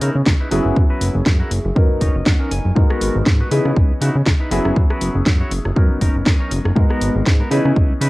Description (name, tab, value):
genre	filtered disco house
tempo	120 BPM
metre	4/4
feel	swing 56% on 16ths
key	B major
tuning	A4 = 439 Hz
part	clear grand piano	accompaniment	0.0-8.1 s	E3 to D#5	-22 LUFS	left 1 dB	phaser, sidechain pumping, low-pass filter, cassette tape
part	clean electric guitar	riff	0.0-8.1 s	B3 to G#5	-26 LUFS	equal	sidechain pumping, low-pass filter, cassette tape
part	fat analog bass	bass	0.0-8.1 s	F#1 to C#3	-19 LUFS	equal	tube saturation, sidechain pumping, low-pass filter
part	house drum kit	drums	0.0-8.1 s	hi-hat, rim click, snare drum	-23 LUFS	equal	overdrive, sidechain pumping on hats, cassette tape
part	electronic kick drum	drums	0.3-7.9 s	none	-15 LUFS	equal	overdrive, cassette tape
room	little or no reverb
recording	home recording on cassette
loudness	-14 LUFS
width	side -19 dB against mid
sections	0.0-8.1 A section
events	filter sweep 0.0-8.1; clean electric guitar fill 1.8-2.8, 6.0-6.8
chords	0.0 C#m9; 0.5 F#7sus4; 1.8 Bmaj9/F#; 2.8 G#m9; 3.5 C#m9; 4.5 F#7sus4; 5.8 Bmaj9/F#; 6.8 G#m9; 7.5 C#m9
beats	0.27 | 0.77 1.26 1.76 2.27 | 2.77 3.27 3.77 4.26 | 4.76 5.26 5.76 6.26 | 6.76 7.26 7.76